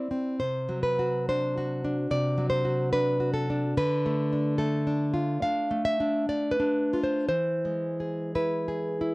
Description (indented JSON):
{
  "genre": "romantic piece for solo classical guitar",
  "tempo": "55-74 BPM",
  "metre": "4/4",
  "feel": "rubato",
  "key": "unclear",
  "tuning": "A4 = 440 Hz",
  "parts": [
    { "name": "nylon-string guitar", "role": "solo", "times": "0.0-9.1 s", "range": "C3 to F5", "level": "-25 LUFS", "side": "equal", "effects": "none" }
  ],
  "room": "light reverb",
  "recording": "dry, close 1970s-style studio recording",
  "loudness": "-25 LUFS",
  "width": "side -23 dB against mid",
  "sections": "0.0-9.1 A section",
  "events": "none",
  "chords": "0.4 D7/C; 3.8 Dm; 7.3 E",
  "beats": "| 0.39 1.27 2.09 2.91 | 3.76 4.58 5.41 6.28 | 7.28 8.35"
}